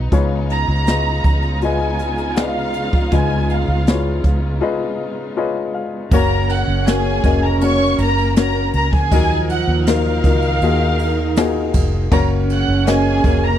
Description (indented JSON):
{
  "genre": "pop ballad",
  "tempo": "80 BPM",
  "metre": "4/4",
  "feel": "straight",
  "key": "unclear",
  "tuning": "A4 = 444 Hz",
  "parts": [
    { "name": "warm baby grand piano", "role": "accompaniment", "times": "0.0-13.6 s", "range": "A#2 to E#5", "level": "-21 LUFS", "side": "left 6 dB", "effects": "none" },
    { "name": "warm studio string section", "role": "sustained chords", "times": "0.0-13.6 s", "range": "C#3 to A#4", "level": "-27 LUFS", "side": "right 1 dB", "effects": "none" },
    { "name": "vintage muted fingered electric bass", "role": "bass", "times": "0.0-13.6 s", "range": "E#1 to D#2", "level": "-19 LUFS", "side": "equal", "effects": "none" },
    { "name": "jazz brush drum kit", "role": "drums", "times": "0.1-13.4 s", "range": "crash cymbal, hi-hat, kick drum, ride cymbal, snare drum", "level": "-18 LUFS", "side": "equal", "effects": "none" },
    { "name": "warm studio violin section", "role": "melody", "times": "0.5-13.6 s", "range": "G#4 to F#6", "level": "-22 LUFS", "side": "right 1 dB", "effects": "slapback echo" },
    { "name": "dark French horn section", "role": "second line", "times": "6.1-13.6 s", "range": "C#3 to E#4", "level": "-24 LUFS", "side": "right 9 dB", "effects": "none" }
  ],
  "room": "little or no reverb",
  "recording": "dry, close 1970s-style studio recording",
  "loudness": "-15 LUFS",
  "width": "side -10 dB against mid",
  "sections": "0.0-6.1 A section; 6.1-13.6 B section",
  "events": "break 4.6-6.1; grand piano fill 5.0-6.1",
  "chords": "0.1 C#7; 6.1 D#madd9",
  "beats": "| 0.12 0.87 1.62 2.37 | 3.12 3.87 4.62 5.37 | 6.12 6.87 7.62 8.37 | 9.12 9.87 10.62 11.37 | 12.12 12.87"
}